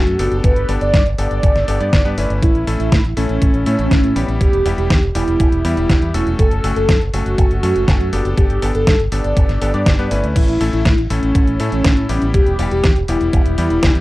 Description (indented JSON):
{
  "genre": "italo disco",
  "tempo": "121 BPM",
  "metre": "4/4",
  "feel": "straight",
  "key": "E dorian",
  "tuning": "A4 = 440 Hz",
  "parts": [
    { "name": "mellow synth brass", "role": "melody", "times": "0.0-14.0 s", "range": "C#4 to D5", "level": "-19 LUFS", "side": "equal", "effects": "chorus, tape echo" },
    { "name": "bright electric grand piano", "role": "stabs", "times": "0.0-14.0 s", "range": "G3 to D5", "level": "-23 LUFS", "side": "left 2 dB", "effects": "none" },
    { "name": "fingered electric bass with an envelope filter", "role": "bass", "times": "0.0-14.0 s", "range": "E1 to A2", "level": "-19 LUFS", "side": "equal", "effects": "none" },
    { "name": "detuned 8-bit digital drum machine", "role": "drums", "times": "0.1-14.0 s", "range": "crash cymbal, hi-hat, snare drum", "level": "-21 LUFS", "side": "equal", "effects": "none" },
    { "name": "electronic kick drum", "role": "drums", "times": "0.4-13.9 s", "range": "none", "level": "-15 LUFS", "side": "equal", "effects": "none" }
  ],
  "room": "little or no reverb",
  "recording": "dry, close 1970s-style studio recording",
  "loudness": "-13 LUFS",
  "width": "side -18 dB against mid",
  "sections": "0.0-14.0 A section",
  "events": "none",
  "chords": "0.4 Gadd9; 2.4 A; 4.4 Em; 6.4 F#m; 8.4 Gadd9; 10.4 A; 12.3 Em"
}